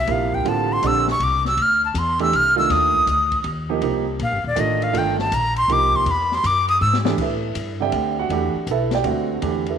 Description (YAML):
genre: modal jazz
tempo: 161 BPM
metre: 3/4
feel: swing 66% on 8ths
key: unclear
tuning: A4 = 441 Hz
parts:
  - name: breathy bright jazz flute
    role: melody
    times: 0.0-7.0 s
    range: D5 to F6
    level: -18 LUFS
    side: left 1 dB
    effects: none
  - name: upright bass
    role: bass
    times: 0.0-9.8 s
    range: Eb1 to A2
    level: -25 LUFS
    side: left 2 dB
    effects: none
  - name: warm grand piano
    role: accompaniment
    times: 0.1-9.8 s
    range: C3 to G5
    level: -23 LUFS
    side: right 8 dB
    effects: none
  - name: open jazz drum kit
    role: drums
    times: 0.1-9.7 s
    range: crash cymbal, hi-hat, kick drum, ride cymbal, snare drum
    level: -32 LUFS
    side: left 6 dB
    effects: none
room: moderate echo chamber reverb, RT60 1.6 s, studio reverb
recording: 1960s-style stereo with parts hard left and right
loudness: -17 LUFS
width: side -8 dB against mid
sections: 0.0-7.2 A section; 7.2-9.8 A section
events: flute solo 0.0-7.2; drum fill 6.8-7.2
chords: 0.0 Dm9; 2.7 Cm9; 6.1 Eadd9; 7.2 A9sus4